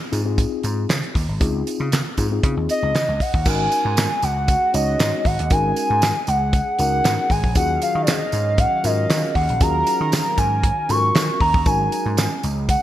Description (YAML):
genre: early-eighties boogie funk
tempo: 117 BPM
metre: 4/4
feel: straight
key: unclear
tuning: A4 = 440 Hz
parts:
  - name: mellow tine electric piano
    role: accompaniment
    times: 0.1-12.3 s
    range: C4 to Db5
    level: -27 LUFS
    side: left 4 dB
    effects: medium stereo tremolo
  - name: vintage slap bass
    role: bass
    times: 0.1-12.7 s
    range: Ab1 to Eb3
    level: -23 LUFS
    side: equal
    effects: none
  - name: damped 70s drum kit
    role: drums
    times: 0.1-12.8 s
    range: crash cymbal, handclaps, hi-hat, kick drum, snare drum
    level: -21 LUFS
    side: equal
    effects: gated reverb
  - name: tambourine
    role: percussion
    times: 0.1-12.8 s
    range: none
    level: -33 LUFS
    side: right 6 dB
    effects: none
  - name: hollow clarinet-like synth lead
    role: melody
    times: 2.7-12.8 s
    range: D5 to Db6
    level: -20 LUFS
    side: equal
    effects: chorus
  - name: brassy analog pad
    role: sustained chords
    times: 3.5-12.8 s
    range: Eb3 to F5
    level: -31 LUFS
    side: right 2 dB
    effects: chorus
room: moderate lush hall reverb, RT60 1.9 s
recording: bright 1980s-style digital production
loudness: -17 LUFS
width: side -13 dB against mid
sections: 0.0-3.5 A section; 3.5-12.8 B section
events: none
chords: 0.0 Dbmaj9; 3.5 Ab7sus4; 7.6 Ebm11; 11.7 Ab7sus4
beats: 0.38 0.89 | 1.41 1.92 2.43 2.94 | 3.46 3.97 4.48 5.00 | 5.51 6.02 6.53 7.05 | 7.56 8.07 8.59 9.10 | 9.61 10.12 10.64 11.15 | 11.66 12.17 12.69